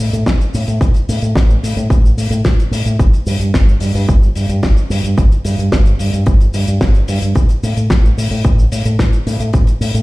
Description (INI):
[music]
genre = nu-disco, nu disco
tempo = 110 BPM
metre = 4/4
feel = straight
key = unclear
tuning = A4 = 441 Hz
[part]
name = fingered electric bass with an envelope filter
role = bass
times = 0.0-10.0 s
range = G1 to A2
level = -15 LUFS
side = equal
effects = none
[part]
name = damped 70s drum kit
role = drums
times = 0.0-10.0 s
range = hi-hat, shaker, snare drum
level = -22 LUFS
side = left 1 dB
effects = studio reverb
[part]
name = electronic kick drum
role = drums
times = 0.3-9.6 s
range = none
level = -12 LUFS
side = equal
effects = studio reverb
[sound]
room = little or no reverb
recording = played on a big sound system in a bare room, large studio reverb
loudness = -11 LUFS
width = side -20 dB against mid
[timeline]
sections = 0.0-10.0 A section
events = none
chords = none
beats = 0.27 | 0.81 1.36 1.90 2.45 | 2.99 3.54 4.08 4.63 | 5.18 5.72 6.27 6.81 | 7.36 7.90 8.45 8.99 | 9.54